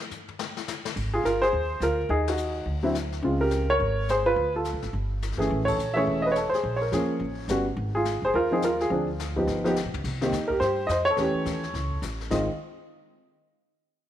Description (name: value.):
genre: jazz piano trio.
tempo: 212 BPM.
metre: 4/4.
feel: swing 61% on 8ths.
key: unclear.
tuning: A4 = 440 Hz.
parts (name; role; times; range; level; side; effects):
jazz brush drum kit; drums; 0.0-12.5 s; brushed snare drum, crash cymbal, hi-hat, kick drum, ride cymbal, snare drum, toms; -37 LUFS; left 6 dB; none.
upright bass; bass; 1.0-12.5 s; E1 to G2; -31 LUFS; equal; none.
warm baby grand piano; melody; 1.1-12.5 s; Db3 to E5; -24 LUFS; equal; none.
room: light reverb, studio reverb.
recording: 1960s-style stereo.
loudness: -24 LUFS.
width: side -11 dB against mid.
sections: 1.0-10.0 A section; 10.0-12.3 B section; 12.3-13.4 C section.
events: band accent 2.2, 5.6; drum fill 9.5-10.0.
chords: 0.0 N.C.; 1.0 Ab6; 2.1 Ebm; 2.7 N.C.; 3.2 Dbmaj7; 4.4 Dm7; 4.9 N.C.; 5.5 Amaj7; 6.6 Bbm7; 7.2 A9; 7.8 Ab5; 8.9 Dm7b5; 9.5 G7b13; 10.0 Cm; 11.2 A7; 12.3 Ab5.